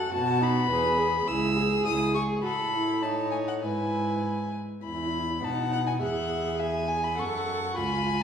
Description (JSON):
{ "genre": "quick classical-period movement for string quartet", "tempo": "103 BPM", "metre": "2/4", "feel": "rubato", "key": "E major", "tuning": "A4 = 440 Hz", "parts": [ { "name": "warm violin", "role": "melody", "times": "0.0-8.2 s", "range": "E5 to E6", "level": "-30 LUFS", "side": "left 3 dB", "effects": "none" }, { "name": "warm violin", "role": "second line", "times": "0.0-8.2 s", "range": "F#4 to G#5", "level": "-32 LUFS", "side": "left 2 dB", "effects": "none" }, { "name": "warm viola", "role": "accompaniment", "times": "0.0-8.2 s", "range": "D#4 to B4", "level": "-31 LUFS", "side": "right 2 dB", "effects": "none" }, { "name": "warm cello", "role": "bass", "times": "0.0-8.2 s", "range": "C#2 to B2", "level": "-31 LUFS", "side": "right 2 dB", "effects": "none" } ], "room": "wet recital hall reverb, RT60 1.4 s", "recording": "recorded in a church or concert hall", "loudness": "-25 LUFS", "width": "side -8 dB against mid", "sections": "0.0-4.8 A section; 4.8-8.2 A section", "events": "none", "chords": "0.1 B7; 0.7 E; 1.3 C#m; 2.4 N.C.; 3.0 A(#11); 3.6 E/G#; 4.8 E5; 5.4 B7; 6.0 E; 7.2 F#m" }